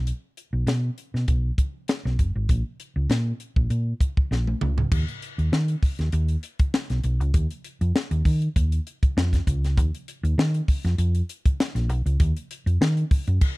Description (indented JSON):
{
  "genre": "polished 1980s jazz-funk pop",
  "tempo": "99 BPM",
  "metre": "4/4",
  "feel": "swing 54% on 16ths",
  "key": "unclear",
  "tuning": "A4 = 440 Hz",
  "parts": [
    { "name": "hollow-body short-scale fingered electric bass", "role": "bass", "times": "0.0-13.4 s", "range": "F#1 to D#3", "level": "-22 LUFS", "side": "equal", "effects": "none" },
    { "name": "crisp fusion drum kit", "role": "drums", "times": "0.1-13.6 s", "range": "crash cymbal, hi-hat, kick drum, snare drum, toms", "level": "-23 LUFS", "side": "equal", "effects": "none" }
  ],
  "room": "little or no reverb",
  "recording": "dry, close 1970s-style studio recording",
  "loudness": "-22 LUFS",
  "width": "side -22 dB against mid",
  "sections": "0.0-4.9 A section; 4.9-13.6 B section",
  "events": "drum fill 4.3-4.9",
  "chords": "none"
}